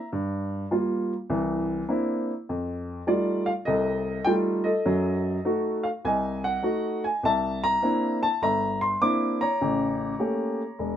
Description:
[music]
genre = solo jazz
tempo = 101 BPM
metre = 4/4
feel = swing 66% on 8ths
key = unclear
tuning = A4 = 441 Hz
[part]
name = warm upright piano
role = solo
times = 0.0-11.0 s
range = E1 to D6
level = -24 LUFS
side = equal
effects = none
[sound]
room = light reverb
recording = minimal, uncompressed stereo recording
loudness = -24 LUFS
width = side -10 dB against mid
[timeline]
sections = 0.0-11.0 A section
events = none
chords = 0.1 Gm7; 1.3 C9; 2.5 F9; 4.9 F#dim7; 7.2 C9; 9.6 A7b9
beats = | 0.11 0.70 1.30 1.89 | 2.48 3.07 3.67 4.26 | 4.85 5.45 6.04 6.63 | 7.22 7.82 8.41 9.00 | 9.60 10.19 10.79

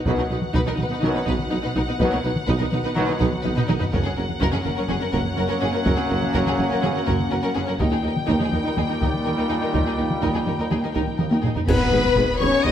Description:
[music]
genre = cinematic, epic orchestral film score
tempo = 124 BPM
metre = 4/4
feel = straight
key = unclear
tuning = A4 = 440 Hz
[part]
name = rich symphonic violin section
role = melody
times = 0.0-12.7 s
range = F#5 to D#6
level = -31 LUFS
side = left 4 dB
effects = none
[part]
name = warm symphonic violin section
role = second line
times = 0.1-12.7 s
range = G#4 to D#5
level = -29 LUFS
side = left 3 dB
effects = none
[part]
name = warm symphonic viola section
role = accompaniment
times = 0.1-12.7 s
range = B3 to G#4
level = -30 LUFS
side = right 1 dB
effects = none
[part]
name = bright trombone section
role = sustained chords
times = 0.1-12.7 s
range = F#2 to B3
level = -30 LUFS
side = right 3 dB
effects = none
[part]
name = mellow French horn section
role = sustained chords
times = 0.1-12.7 s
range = A#3 to D#4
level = -27 LUFS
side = left 4 dB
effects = none
[part]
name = mellow tuba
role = bass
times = 0.1-12.7 s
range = F#1 to D#2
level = -29 LUFS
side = right 3 dB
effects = none
[part]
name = rich symphonic cello section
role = bass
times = 0.1-12.7 s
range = D#2 to B2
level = -29 LUFS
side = right 2 dB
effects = none
[part]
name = rich symphonic double bass section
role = bass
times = 0.1-12.7 s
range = F#1 to D#2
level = -30 LUFS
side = right 2 dB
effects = none
[part]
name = taiko ensemble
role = drums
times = 0.1-12.7 s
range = none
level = -26 LUFS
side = equal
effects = none
[part]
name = bright silver concert flute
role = second line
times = 11.7-12.7 s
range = B4 to D#5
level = -26 LUFS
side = left 2 dB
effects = none
[part]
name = clash cymbals and concert bass drum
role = percussion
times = 11.7-12.6 s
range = none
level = -29 LUFS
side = equal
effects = none
[part]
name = sub drop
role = sound effects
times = 11.9-12.7 s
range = none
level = -34 LUFS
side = equal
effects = none
[sound]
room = wet recital hall reverb, RT60 1.4 s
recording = none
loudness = -19 LUFS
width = side -10 dB against mid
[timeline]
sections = 0.0-11.7 A section; 11.7-12.7 B section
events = drum fill 3.4-3.9, 11.2-11.7; band accent 11.7-12.2; impact 11.7-12.7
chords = 0.0 B; 3.9 F#; 7.8 D#; 11.7 G#m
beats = | 0.06 0.54 1.03 1.51 | 2.00 2.48 2.96 3.45 | 3.93 4.41 4.90 5.38 | 5.87 6.35 6.83 7.32 | 7.80 8.29 8.77 9.25 | 9.74 10.22 10.71 11.19 | 11.67 12.16 12.64

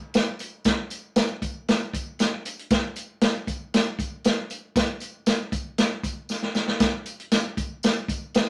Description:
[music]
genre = soul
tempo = 117 BPM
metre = 4/4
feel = straight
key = none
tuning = none
[part]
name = vintage drum kit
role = drums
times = 0.1-8.5 s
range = hi-hat, kick drum, snare drum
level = -25 LUFS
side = equal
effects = none
[part]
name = tambourine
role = percussion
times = 0.1-8.5 s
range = none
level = -40 LUFS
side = equal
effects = none
[sound]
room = wet small room reverb, RT60 0.5 s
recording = none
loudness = -26 LUFS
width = mono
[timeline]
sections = 0.0-8.5 A section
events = drum fill 6.3-6.8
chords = none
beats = 0.14 | 0.66 1.17 1.68 2.19 | 2.71 3.22 3.73 4.24 | 4.75 5.27 5.78 6.29 | 6.80 7.32 7.83 8.34

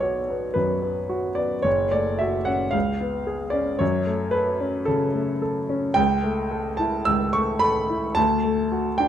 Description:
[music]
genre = classical, romantic character piece for solo piano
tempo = 110 BPM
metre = 4/4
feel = rubato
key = unclear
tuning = A4 = 440 Hz
[part]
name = clear grand piano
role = solo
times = 0.0-9.1 s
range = F#1 to E6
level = -21 LUFS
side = equal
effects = none
[sound]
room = moderate recital hall reverb, RT60 1.4 s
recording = close, detailed microphones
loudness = -21 LUFS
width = side -10 dB against mid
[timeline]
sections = 0.0-9.1 A section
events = none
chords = 0.0 Bm; 1.7 F#m; 2.7 C#7; 3.8 F#m; 6.0 A7/C#; 8.2 D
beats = 0.02 0.56 1.11 | 1.66 2.21 2.74 3.27 | 3.81 4.35 4.89 5.43 | 5.98 6.52 7.08 7.62 | 8.17 8.72

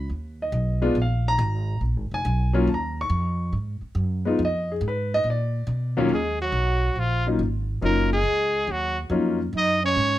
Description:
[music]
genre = jazz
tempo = 140 BPM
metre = 4/4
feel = swing 67% on 8ths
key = Eb minor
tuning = A4 = 440 Hz
[part]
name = warm concert grand piano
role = accompaniment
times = 0.0-9.4 s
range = Eb2 to Db6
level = -24 LUFS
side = left 2 dB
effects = none
[part]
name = upright bass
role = bass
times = 0.0-10.2 s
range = F1 to Cb3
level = -25 LUFS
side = equal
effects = none
[part]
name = bright trumpet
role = melody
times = 6.1-10.2 s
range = F4 to Eb5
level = -23 LUFS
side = equal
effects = none
[part]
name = growling trombone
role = second line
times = 6.1-10.2 s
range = F3 to Eb4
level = -31 LUFS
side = right 4 dB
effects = none
[sound]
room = light reverb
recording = none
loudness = -22 LUFS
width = side -14 dB against mid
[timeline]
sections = 0.0-6.1 A section; 6.1-10.2 B section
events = none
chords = 0.0 B; 1.0 Bb5; 2.7 Ebm9; 4.4 Fm7b5; 5.3 Bb; 6.1 Ebm9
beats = 0.10 0.53 | 0.96 1.39 1.82 2.25 | 2.68 3.10 3.53 3.96 | 4.39 4.82 5.25 5.68 | 6.11 6.54 6.97 7.40 | 7.83 8.26 8.69 9.12 | 9.55 9.97

